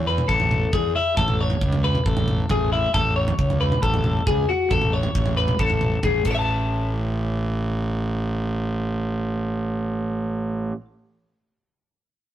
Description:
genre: math rock and midwest emo.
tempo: 136 BPM.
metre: 4/4.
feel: straight.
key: A major.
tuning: A4 = 443 Hz.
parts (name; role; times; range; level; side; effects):
twelve-string electric guitar; arpeggios; 0.0-10.8 s; E4 to A5; -23 LUFS; left 4 dB; none.
fuzz fingered electric bass; bass; 0.0-10.7 s; A1 to E2; -23 LUFS; right 1 dB; overdrive.
modern studio drum kit; drums; 0.2-6.4 s; crash cymbal, kick drum, toms; -24 LUFS; right 1 dB; none.
room: light reverb.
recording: rough rehearsal-room recording, warm saturation.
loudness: -20 LUFS.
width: side -12 dB against mid.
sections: 0.0-6.5 A section; 6.5-10.0 B section.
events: none.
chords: 0.0 Amaj7; 2.9 F#m/A (rootless); 6.3 A.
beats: 0.29 0.73 | 1.18 1.62 2.06 2.50 | 2.94 3.38 3.83 4.27 | 4.71 5.15 5.60 6.04 | 6.48 6.93 7.37 7.81 | 8.26 8.70 9.14 9.59.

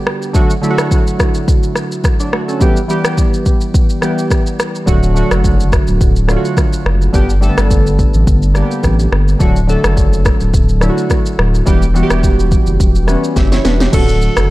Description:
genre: afrobeats.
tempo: 106 BPM.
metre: 4/4.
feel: swing 55% on 16ths.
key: D major.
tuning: A4 = 437 Hz.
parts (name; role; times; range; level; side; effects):
warm analog keys; accompaniment; 0.0-14.5 s; D3 to E5; -16 LUFS; right 1 dB; chorus.
afro-pop drum kit; drums; 0.1-14.5 s; crash cymbal, kick drum, rim click, shaker, snare drum; -14 LUFS; equal; none.
saturated sub bass; bass; 4.9-14.5 s; D1 to A1; -13 LUFS; equal; none.
breathy alto saxophone; melody; 13.9-14.5 s; A4; -18 LUFS; equal; none.
room: digital ambience.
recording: none.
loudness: -10 LUFS.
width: side -18 dB against mid.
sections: 0.0-13.9 A section.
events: drum fill 13.4-13.9.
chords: 0.3 D; 2.6 Em; 4.9 D; 7.1 G; 9.4 D; 11.7 Em; 13.9 D.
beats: | 0.35 0.91 1.48 2.04 | 2.61 3.18 3.74 4.31 | 4.88 5.44 6.01 6.57 | 7.14 7.71 8.27 8.84 | 9.40 9.97 10.54 11.10 | 11.67 12.23 12.80 13.37 | 13.93 14.50.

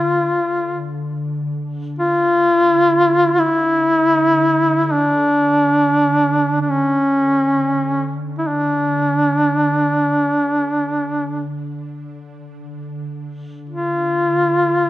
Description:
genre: caucasian folk, Caucasian lament.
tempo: free time.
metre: none.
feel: none.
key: D harmonic minor.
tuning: A4 = 435 Hz.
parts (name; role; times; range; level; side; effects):
warm duduk; melody; 0.0-14.9 s; C#4 to F4; -15 LUFS; equal; none.
ethereal airy pad; drone; 0.0-14.9 s; D3; -25 LUFS; right 1 dB; ensemble chorus, built-in reverb, phaser.
room: wet recital hall reverb, RT60 1.5 s.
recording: worn, warbling old tape, cassette tape, warbly pitch drift.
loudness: -15 LUFS.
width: side -15 dB against mid.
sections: 0.0-14.9 A section.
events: none.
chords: none.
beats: free time.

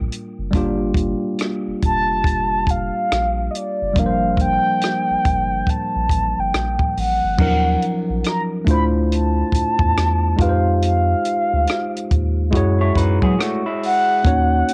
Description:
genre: R&B, neo-soul.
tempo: 70 BPM.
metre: 4/4.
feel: swing 62% on 16ths.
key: G minor.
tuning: A4 = 440 Hz.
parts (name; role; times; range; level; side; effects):
mellow horn-like synth lead; melody; 0.0-14.7 s; D5 to B5; -22 LUFS; equal; chorus, cassette tape.
tine electric piano; accompaniment; 0.0-14.7 s; F3 to C#5; -25 LUFS; equal; cassette tape.
round analog bass; bass; 0.0-14.6 s; F1 to F#3; -23 LUFS; equal; none.
compact cocktail drum kit; drums; 0.1-14.7 s; crash cymbal, hi-hat, kick drum, rim click; -24 LUFS; equal; cassette tape.
electric guitar through a small old amp; second line; 12.8-14.2 s; G#3 to C#5; -27 LUFS; equal; cassette tape.
room: light reverb, small room ambience.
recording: home recording on cassette.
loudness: -19 LUFS.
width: mono.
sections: 0.0-7.4 A section; 7.4-14.7 B section.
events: none.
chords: 0.0 Gm9; 7.4 Ebm9; 8.7 Dm9; 10.4 Fm9; 12.5 F#sus2.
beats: | 0.53 1.39 2.25 3.10 | 3.96 4.82 5.67 6.53 | 7.39 8.24 9.10 9.96 | 10.82 11.67 12.53 13.39 | 14.24.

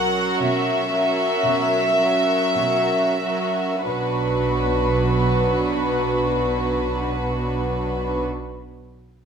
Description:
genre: classical, slow romantic movement for string orchestra.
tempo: 45-61 BPM.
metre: 4/4.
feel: rubato.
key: B minor.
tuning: A4 = 440 Hz.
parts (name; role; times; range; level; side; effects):
warm studio violin section; melody; 0.0-8.2 s; B4 to F#5; -23 LUFS; left 2 dB; none.
clear studio violin section; second line; 0.0-8.2 s; F#4 to B4; -25 LUFS; equal; none.
warm studio viola section; accompaniment; 0.0-8.2 s; F#3 to D4; -26 LUFS; right 4 dB; none.
warm studio cello section; bass; 0.0-8.2 s; B2; -29 LUFS; right 1 dB; none.
warm studio double bass section; bass; 0.0-8.2 s; B1; -27 LUFS; right 2 dB; none.
room: moderate recital hall reverb, RT60 1.3 s.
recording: minimal, uncompressed stereo recording.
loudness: -19 LUFS.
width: side -7 dB against mid.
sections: 0.0-3.9 A section; 3.9-8.8 B section.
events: slowing down 0.0-3.9.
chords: 0.0 F#7/B; 3.9 Bm.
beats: 0.40 1.44 2.58 | 3.85 5.08 6.33 7.55.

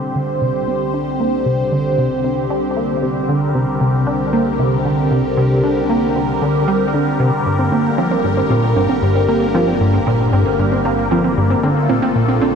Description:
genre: ambient, sequencer-driven space music.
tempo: 115 BPM.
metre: 4/4.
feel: straight.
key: unclear.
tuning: A4 = 438 Hz.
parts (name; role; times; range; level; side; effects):
phased analog pad; sustained chords; 0.0-12.6 s; D3 to C5; -18 LUFS; equal; phaser, chorus.
plucky analog bass; riff; 0.0-12.6 s; G2 to D4; -17 LUFS; equal; ensemble chorus, ping-pong delay.
analog drone; bass; 0.3-12.6 s; G1 to C2; -32 LUFS; equal; chorus, tube saturation.
wide unison pluck; arpeggios; 7.6-12.5 s; C4; -21 LUFS; right 2 dB; auto-pan, ping-pong delay.
room: moderate huge ambient reverb, RT60 8.5 s.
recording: none.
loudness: -14 LUFS.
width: side -6 dB against mid.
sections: 0.0-12.6 A section.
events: fade-in on synth drone 0.0-12.6.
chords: 0.0 Csus2; 7.5 Gm; 11.6 Bbmaj7.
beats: 0.15 0.68 | 1.20 1.72 2.24 2.76 | 3.29 3.81 4.33 4.85 | 5.37 5.89 6.42 6.94 | 7.46 7.98 8.50 9.03 | 9.55 10.07 10.59 11.11 | 11.63 12.15.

